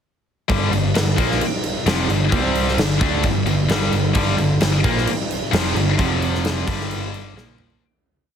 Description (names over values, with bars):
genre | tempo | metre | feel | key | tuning
hard rock | 131 BPM | 4/4 | straight | G minor | A4 = 439 Hz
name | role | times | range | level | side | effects
crunchy overdriven guitar | riff | 0.5-7.8 s | F2 to D4 | -24 LUFS | right 8 dB | none
heavy high-gain guitar | riff | 0.5-7.8 s | F2 to D4 | -22 LUFS | left 9 dB | distortion
picked electric bass | bass | 0.5-7.8 s | F1 to D2 | -24 LUFS | equal | none
huge arena drum kit | drums | 0.5-7.8 s | crash cymbal, kick drum, snare drum, toms | -21 LUFS | equal | none
room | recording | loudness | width
light reverb, small room ambience | heavily compressed radio sound | -17 LUFS | side -8 dB against mid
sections
0.5-7.8 riff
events
fade-out 6.0-7.8; drum fill 7.4-7.8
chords
0.5 Gm; 2.3 C5; 2.8 Gm; 6.0 F5; 6.7 G5; 7.4 Bb5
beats
| 0.50 0.95 1.41 1.86 | 2.32 2.78 3.24 3.70 | 4.15 4.61 5.07 5.53 | 5.98 6.44 6.90 7.35